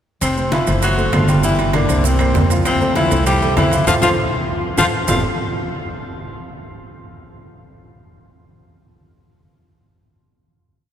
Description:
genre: Afro-Cuban jazz.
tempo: 198 BPM.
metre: 4/4.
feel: straight.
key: F major.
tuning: A4 = 440 Hz.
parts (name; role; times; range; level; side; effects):
warm tenor saxophone; melody; 0.2-5.2 s; C4 to G4; -20 LUFS; left 2 dB; none.
growling baritone saxophone; second line; 0.2-5.2 s; C3 to G3; -24 LUFS; left 3 dB; none.
upright bass; bass; 0.2-5.2 s; F1 to F2; -20 LUFS; equal; none.
bongos; percussion; 0.2-5.2 s; none; -30 LUFS; left 3 dB; none.
claves; percussion; 0.2-5.2 s; none; -31 LUFS; right 2 dB; none.
congas; percussion; 0.2-5.2 s; none; -24 LUFS; equal; none.
maracas; percussion; 0.2-5.2 s; none; -30 LUFS; right 6 dB; none.
timbales; percussion; 0.2-5.2 s; none; -27 LUFS; right 4 dB; none.
warm grand piano; accompaniment; 0.4-5.2 s; F3 to G5; -23 LUFS; right 2 dB; none.
room: wet cathedral reverb, RT60 5.3 s.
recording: recorded in a church or concert hall.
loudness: -14 LUFS.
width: side -9 dB against mid.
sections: 0.2-5.1 A section; 5.1-6.3 final chord.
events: band accent 3.9-5.1; drum fill 4.2-5.1.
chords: 0.2 Fmaj7; 0.8 F#dim; 1.4 Gm; 2.0 C7sus4; 2.7 Fmaj9.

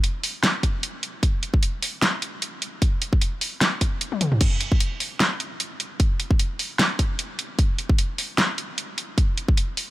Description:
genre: future bass.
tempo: 151 BPM.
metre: 4/4.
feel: swing 55% on 16ths, half-time.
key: none.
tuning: none.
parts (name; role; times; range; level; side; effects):
pop drum kit; drums; 0.0-9.9 s; crash cymbal, hi-hat, snare drum, toms; -24 LUFS; equal; none.
electronic kick drum; drums; 0.6-9.6 s; none; -21 LUFS; equal; none.
room: digital ambience.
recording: none.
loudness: -21 LUFS.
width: side -16 dB against mid.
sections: 0.0-9.9 A section.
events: drum fill 4.1.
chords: none.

